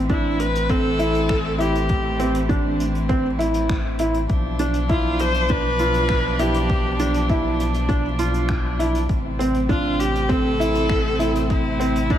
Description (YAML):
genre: piano and strings electronica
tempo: 100 BPM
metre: 4/4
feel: straight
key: A minor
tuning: A4 = 436 Hz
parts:
  - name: dark string quartet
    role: sustained chords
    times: 0.0-12.2 s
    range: B2 to D4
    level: -27 LUFS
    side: right 2 dB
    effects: sidechain pumping, shimmer reverb
  - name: warm sub bass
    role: bass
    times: 0.0-12.2 s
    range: A1 to B1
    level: -25 LUFS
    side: equal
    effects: sidechain pumping
  - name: rich viola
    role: melody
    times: 0.1-12.2 s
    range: E4 to C5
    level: -25 LUFS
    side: left 1 dB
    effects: ping-pong delay, shimmer reverb
  - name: felt-muted upright piano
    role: riff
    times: 0.1-12.2 s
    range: C4 to F4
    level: -24 LUFS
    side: right 1 dB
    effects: ping-pong delay, shimmer reverb
  - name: electronic kick drum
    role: drums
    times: 0.1-12.2 s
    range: none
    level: -23 LUFS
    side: equal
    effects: overdrive
  - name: jazz brush drum kit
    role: drums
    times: 0.1-12.2 s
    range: finger snaps, hi-hat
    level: -36 LUFS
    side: equal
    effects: none
room: light reverb, small room ambience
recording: none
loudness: -18 LUFS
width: side -10 dB against mid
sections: 0.0-12.2 A section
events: none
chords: 0.0 Am; 4.3 Bdim; 9.1 Am